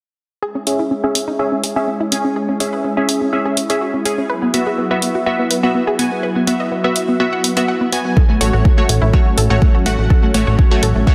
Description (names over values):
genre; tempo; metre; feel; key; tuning
progressive house; 124 BPM; 4/4; straight; C# minor; A4 = 440 Hz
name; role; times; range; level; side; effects
lush unison pad; sustained chords; 0.4-11.1 s; F#3 to E4; -26 LUFS; equal; chorus, sidechain pumping
analog pluck; arpeggios; 0.4-11.1 s; A3 to F#5; -24 LUFS; equal; chorus, sidechain pumping, tape echo
supersaw stab; stabs; 0.7-11.1 s; A3 to G#5; -22 LUFS; equal; sidechain pumping, low-pass filter, tape echo
electronic hi-hat; drums; 0.7-10.9 s; none; -22 LUFS; equal; overdrive, sidechain pumping on hats
electronic kick drum; drums; 8.2-11.1 s; none; -14 LUFS; equal; overdrive
plucky analog bass; bass; 8.4-11.1 s; A1; -17 LUFS; equal; sidechain pumping
room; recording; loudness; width
moderate lush hall reverb, RT60 2.1 s; dense, heavily limited modern master; -16 LUFS; mono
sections
0.4-11.1 A section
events
filter sweep on synth pluck 0.4-11.1; filter sweep on supersaw synth 0.4-11.1; filter sweep on analog synth pad 0.4-11.1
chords
0.4 C#m; 4.3 Bsus4; 8.2 A6